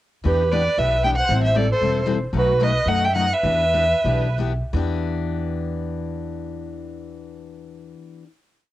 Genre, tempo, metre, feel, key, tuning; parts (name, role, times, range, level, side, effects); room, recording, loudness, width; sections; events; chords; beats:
acoustic string swing (jazz manouche); 160-230 BPM; 4/4; swing 55% on 8ths; E minor; A4 = 441 Hz
picked steel-string acoustic guitar; accompaniment; 0.2-8.3 s; B2 to A4; -28 LUFS; left 7 dB; cassette tape
warm violin; melody; 0.3-4.4 s; B4 to G5; -20 LUFS; right 1 dB; cassette tape
musette accordion; second line; 0.3-4.4 s; F#4 to E5; -30 LUFS; right 8 dB; cassette tape
upright bass; bass; 0.3-7.9 s; E1 to F#2; -23 LUFS; equal
light reverb; home recording on cassette; -18 LUFS; side -14 dB against mid
0.2-4.7 A section; 4.7-7.7 final chord
slowing down 2.3-4.7
0.2 Em7; 1.3 Am7; 2.3 B7; 3.4 Em7
| 0.24 0.51 0.77 1.03 | 1.29 1.55 1.81 2.08 | 2.34 2.60 2.87 3.14 | 3.43 3.73 4.04 4.37 | 4.73 5.11 5.48 5.86 | 6.23 6.61 6.98 7.36